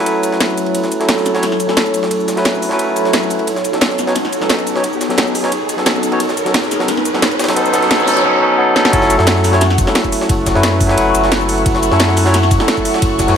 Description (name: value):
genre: liquid drum and bass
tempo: 176 BPM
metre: 4/4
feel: straight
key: F# dorian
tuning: A4 = 441 Hz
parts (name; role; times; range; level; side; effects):
- barky tine electric piano; accompaniment; 0.0-13.4 s; F#3 to C#5; -16 LUFS; equal; ping-pong delay
- airy breathy pad; sustained chords; 0.0-13.4 s; F#3 to C#6; -20 LUFS; left 1 dB; chorus, phaser, sidechain pumping
- vibraphone with soft mallets; arpeggios; 0.0-13.4 s; D#4 to A4; -22 LUFS; right 1 dB; ping-pong delay
- riser and noise sweep; sound effects; 0.9-8.9 s; none; -24 LUFS; right 1 dB; none
- drum and bass drum kit; drums; 0.1-13.3 s; hi-hat, shaker, snare drum; -18 LUFS; equal; none
- jungle sampler-style drum kit; drums; 0.1-13.4 s; ride cymbal, snare drum; -23 LUFS; equal; overdrive, high-pass filter on cymbals, high-pass filter on snare
- warm sub bass; bass; 8.9-13.4 s; F#1 to F#2; -17 LUFS; equal; none
- electronic kick drum; drums; 8.9-13.3 s; none; -18 LUFS; equal; none
room: moderate lush hall reverb, RT60 2.2 s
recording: none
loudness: -12 LUFS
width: side -8 dB against mid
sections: 0.0-8.9 A section; 8.9-13.4 B section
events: build-up 0.0-8.9; filter sweep on analog synth pad 0.0-8.9; riser 0.9-8.2; noise sweep 7.6-8.9; drum fill 8.8; drop 8.9-13.4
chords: 0.0 F#m7; 3.5 B9; 8.9 F#m7